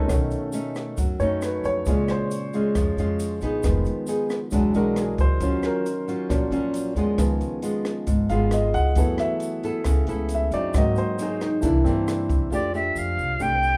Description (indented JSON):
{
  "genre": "bossa nova",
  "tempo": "135 BPM",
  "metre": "4/4",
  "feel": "straight",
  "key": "unclear",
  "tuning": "A4 = 441 Hz",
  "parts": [
    { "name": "nylon-string guitar", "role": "accompaniment", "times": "0.0-13.8 s", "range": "Ab2 to A4", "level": "-29 LUFS", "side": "equal", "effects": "none" },
    { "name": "warm grand piano", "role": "accompaniment", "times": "0.0-13.8 s", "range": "Db3 to Gb5", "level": "-29 LUFS", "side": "equal", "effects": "none" },
    { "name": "upright bass", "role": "bass", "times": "0.0-13.8 s", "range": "E1 to Ab2", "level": "-29 LUFS", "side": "equal", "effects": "none" },
    { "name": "compact cocktail drum kit", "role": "drums", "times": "0.1-12.4 s", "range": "hi-hat, kick drum, rim click", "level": "-28 LUFS", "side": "equal", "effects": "none" },
    { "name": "tube shaker", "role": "percussion", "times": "0.1-13.8 s", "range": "none", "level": "-48 LUFS", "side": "equal", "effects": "none" },
    { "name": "bright reedy jazz flute", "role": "melody", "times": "12.5-13.8 s", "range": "D5 to G5", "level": "-25 LUFS", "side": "equal", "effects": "none" }
  ],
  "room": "light reverb",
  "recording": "band playing live in one room",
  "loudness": "-24 LUFS",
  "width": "mono",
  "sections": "0.0-12.5 A section; 12.5-13.8 B section",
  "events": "grand piano solo 0.0-12.5",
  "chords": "0.1 Cb9; 1.9 Bbm7; 3.6 Fm7b5; 4.5 E9; 5.4 Ebm9; 7.2 Db7; 9.0 Gbm11; 10.7 Ab7; 11.6 C9; 12.5 F69"
}